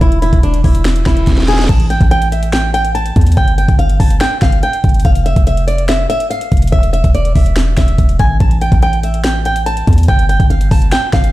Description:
hip hop, trap; 143 BPM; 4/4; half-time; A4 = 440 Hz
flamenco guitar; melody; 0.0-11.3 s; D4 to A5; -17 LUFS; equal; ping-pong delay
warm 808-style bass; bass; 0.0-11.3 s; E1 to E2; -13 LUFS; equal
trap drum kit; drums; 0.0-11.3 s; crash cymbal, finger snaps, hi-hat, kick drum, snare drum; -13 LUFS; equal
reverse cymbal; sound effects; 1.0-1.7 s; -28 LUFS; right 4 dB
digital ambience; played on a big sound system in a bare room, stone room reverb; -10 LUFS; side -16 dB against mid
0.0-1.7 A section; 1.7-11.3 B section
reverse cymbal 1.0-1.7; drum fill 1.3-1.7
0.0 N.C.; 1.7 A5; 3.4 N.C.; 5.0 Dmadd9/F (rootless); 6.7 N.C.; 8.4 A5; 10.1 Fsus2/G

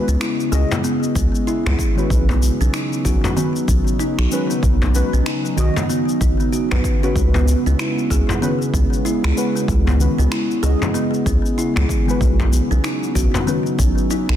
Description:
organic downtempo; 95 BPM; 4/4; swing 60% on 16ths; A4 = 440 Hz
deep mellow chord stab; accompaniment; 0.0-13.6 s; D#3 to D#5; -26 LUFS; left 1 dB; chorus, cassette tape, sidechain pumping, ping-pong delay
warbly tape-like pad; sustained chords; 0.0-14.4 s; C#3 to D#4; -25 LUFS; right 1 dB; chorus, built-in reverb, sidechain pumping
kalimba; arpeggios; 0.0-14.4 s; B3 to B4; -23 LUFS; equal; ping-pong delay
round analog bass; bass; 0.1-14.4 s; B1 to C#2; -17 LUFS; equal; sidechain pumping
electronic shaker and finger snaps; drums; 0.1-14.4 s; -29 LUFS; left 2 dB; soft clipping on snare
frame drum; percussion; 0.7-13.4 s; -25 LUFS; left 2 dB
electronic kick drum; drums; 1.2-13.9 s; -21 LUFS; equal
light reverb; dense, heavily limited modern master; -16 LUFS; side -11 dB against mid
0.0-14.4 A section
0.0 C#m7; 2.1 Badd9; 7.2 C#m7; 12.2 Badd9

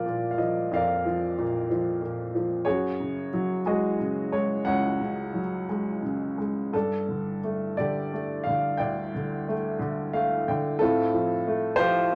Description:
classical, lyrical solo piano; 57-63 BPM (dotted quarters); 6/8; rubato; A4 = 440 Hz
clear upright piano; solo; 0.0-12.2 s; Db2 to G5; -27 LUFS; equal
moderate studio reverb, RT60 0.5 s; -27 LUFS; mono
0.0-12.2 A section
upright piano fill 9.8-10.8
0.0 Bb; 2.7 Gbsus2; 6.7 Gsus2; 10.8 Fadd9/A

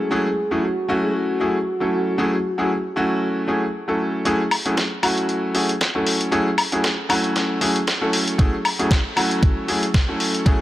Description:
nu-disco, nu disco; 116 BPM; 4/4; swing 56% on 16ths; F# minor; A4 = 440 Hz
soft octave-layered synth lead; melody; 0.0-3.7 s; E4 to G#4; -25 LUFS; equal; chorus, cassette tape, tape echo
bright concert grand piano; accompaniment; 0.0-10.6 s; F#3 to A4; -20 LUFS; equal; sidechain pumping, tape echo
dusty soul sampler-style drum kit; drums; 4.3-10.6 s; hi-hat, snare drum, woodblock; -22 LUFS; left 1 dB; high-pass filter on hats, high-pass filter on perc, high-pass filter on snare
electronic kick drum; drums; 8.4-10.6 s; -16 LUFS; equal; overdrive
light reverb; -18 LUFS; side -15 dB against mid
0.0-4.3 A section; 4.3-10.6 B section
build-up 4.3-10.6
0.0 F#m9

